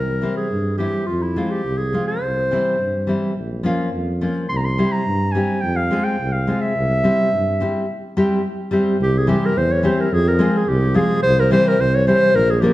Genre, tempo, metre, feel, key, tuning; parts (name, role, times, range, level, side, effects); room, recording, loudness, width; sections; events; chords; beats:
balkan folk, Balkan wedding band; 106 BPM; 2/4; swing 55% on 16ths; C phrygian dominant; A4 = 440 Hz
mellow clarinet; melody; 0.0-12.7 s; E4 to C6; -20 LUFS; equal
mellow tuba; bass; 0.0-12.7 s; Bb1 to G2; -22 LUFS; equal
nylon-string guitar; accompaniment; 0.2-12.7 s; E3 to Bb4; -21 LUFS; left 1 dB
wet recital hall reverb, RT60 1.6 s; dark, warm production; -16 LUFS; side -16 dB against mid
0.0-9.0 A section; 9.0-12.7 B section
clarinet solo 0.0-9.0
0.0 C; 1.1 Fm; 2.2 C; 3.4 Bbm; 4.5 C; 5.6 Fm; 6.8 C; 10.1 Fm; 11.2 C
0.52 | 1.09 1.66 | 2.23 2.80 | 3.37 3.94 | 4.51 5.08 | 5.64 6.21 | 6.77 7.34 | 7.90 8.46 | 9.02 9.57 | 10.13 10.69 | 11.24 11.80 | 12.36